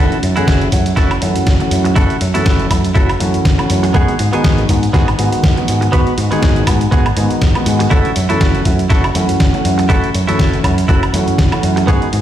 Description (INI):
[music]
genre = nu-disco, nu disco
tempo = 121 BPM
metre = 4/4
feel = swing 56% on 16ths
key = F# dorian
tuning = A4 = 440 Hz
[part]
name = warm grand piano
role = accompaniment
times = 0.0-12.0 s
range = D#3 to F#4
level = -18 LUFS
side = left 1 dB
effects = sidechain pumping, low-pass filter, dub echo
[part]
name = direct-recorded clean electric guitar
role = riff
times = 0.0-12.1 s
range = B3 to B4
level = -21 LUFS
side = right 2 dB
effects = wide subtle chorus, dub echo
[part]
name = picked electric bass with an envelope filter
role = bass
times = 0.0-12.2 s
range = F#1 to G#2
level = -17 LUFS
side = equal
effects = none
[part]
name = dusty soul sampler-style drum kit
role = drums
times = 0.1-12.2 s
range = hi-hat, snare drum, woodblock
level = -20 LUFS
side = right 1 dB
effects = none
[part]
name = electronic kick drum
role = drums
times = 0.5-12.0 s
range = none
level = -14 LUFS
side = equal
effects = none
[sound]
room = light reverb, digital ambience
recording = played on a big sound system in a bare room, large studio reverb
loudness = -11 LUFS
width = side -11 dB against mid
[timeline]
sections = 0.0-12.2 A section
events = filter sweep on grand piano 0.0-12.2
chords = 0.0 F#m7; 3.9 G#m7; 7.9 F#m7